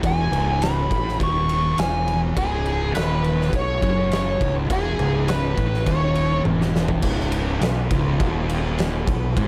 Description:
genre	stoner and doom metal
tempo	103 BPM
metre	4/4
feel	straight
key	C# minor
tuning	A4 = 438 Hz
part	thick fuzz guitar	riff	0.0-9.5 s	C#2 to B2	-30 LUFS	equal	distortion
part	thick fuzz guitar	riff	0.0-9.5 s	C#2 to B2	-29 LUFS	equal	distortion
part	growling fingered electric bass	bass	0.0-9.5 s	C#1 to B1	-28 LUFS	equal	overdrive
part	oversized low-tuned drum kit	drums	0.0-9.5 s	crash cymbal, kick drum, ride cymbal, snare drum, toms	-27 LUFS	equal	none
part	fuzz lead guitar	melody	0.1-6.4 s	G#4 to C#6	-27 LUFS	equal	wah, distortion, analog delay
room	light reverb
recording	none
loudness	-21 LUFS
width	mono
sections	0.0-7.0 A section; 7.0-9.5 B section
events	drum fill 6.4-7.0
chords	0.0 C#m; 7.0 C#5

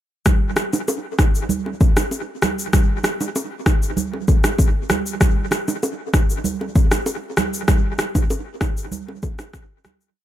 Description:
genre	afrobeats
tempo	97 BPM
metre	4/4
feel	straight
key	none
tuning	none
part	afro-pop drum kit	drums	0.3-10.1 s	kick drum, rim click, shaker	-18 LUFS	equal	dub echo
part	congas and bongos	percussion	0.3-10.0 s	none	-25 LUFS	right 4 dB	dub echo
room	digital ambience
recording	echo-heavy mix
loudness	-17 LUFS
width	side -12 dB against mid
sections	0.3-10.2 verse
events	fade-out 7.7-10.2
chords	none

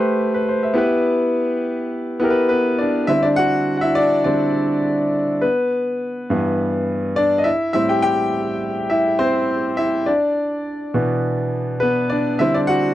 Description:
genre	soul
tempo	103 BPM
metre	4/4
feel	swing 54% on 16ths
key	G major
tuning	A4 = 440 Hz
part	clear concert grand piano	solo	0.0-12.9 s	G2 to G5	-17 LUFS	equal	none
room	light reverb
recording	dry, close 1970s-style studio recording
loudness	-17 LUFS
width	side -14 dB against mid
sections	0.0-3.1 A section; 3.1-12.9 A section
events	grand piano solo 3.1-12.9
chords	0.0 Am9; 0.8 G6/B; 3.1 D9sus4; 5.4 G6; 7.5 Am7; 10.1 Bmadd11; 12.4 D9sus4

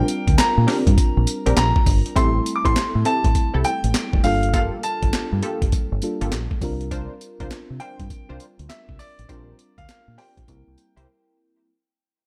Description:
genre	R&B, new jack swing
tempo	101 BPM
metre	4/4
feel	swing 64% on 16ths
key	unclear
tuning	A4 = 440 Hz
part	bright concert grand piano	melody	0.0-11.3 s	D5 to D6	-27 LUFS	equal	none
part	mellow FM electric piano	accompaniment	0.0-11.7 s	G3 to Bb4	-31 LUFS	equal	chorus
part	funky polysynth comp	stabs	0.0-11.1 s	Bb3 to C5	-30 LUFS	equal	chorus
part	breakbeat sampler-style drum kit	drums	0.1-11.1 s	handclaps, hi-hat, kick drum, snare drum, tambourine	-24 LUFS	equal	gated reverb
part	deep dub fingered electric bass	bass	0.3-11.0 s	E1 to C3	-24 LUFS	equal	none
room	digital ambience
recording	none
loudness	-20 LUFS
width	mono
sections	0.0-11.7 A section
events	fade-out 0.0-11.7; break 11.1-11.7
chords	0.0 Bb69; 2.2 Am7; 4.2 Gm9; 6.6 C9sus4; 9.3 Bb69; 10.5 C7

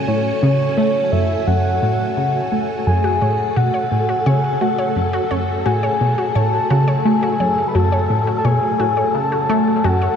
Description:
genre	ambient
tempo	86 BPM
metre	4/4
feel	straight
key	F# minor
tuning	A4 = 440 Hz
part	string machine, full ensemble	sustained chords	0.0-10.2 s	A3 to A4	-25 LUFS	right 1 dB	ensemble chorus, shimmer reverb
part	wind-like tuned noise texture	texture	0.0-10.2 s	A4 to G#5	-28 LUFS	left 2 dB	built-in reverb, shimmer reverb
part	soft octave-layered synth lead	melody	0.1-10.2 s	C#5 to B5	-20 LUFS	left 1 dB	chorus, shimmer reverb, ping-pong delay
part	plucky analog bass	riff	0.1-10.1 s	F#2 to A3	-18 LUFS	equal	analog chorus, ping-pong delay
part	wide unison pluck	arpeggios	3.0-10.2 s	F#4 to C#5	-25 LUFS	left 1 dB	auto-pan, vintage 12-bit sampler grit, shimmer reverb, ping-pong delay
room	wet huge ambient reverb, RT60 8.2 s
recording	in a vast, echoing space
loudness	-15 LUFS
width	side -7 dB against mid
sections	0.0-10.2 A section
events	none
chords	0.0 F#madd9

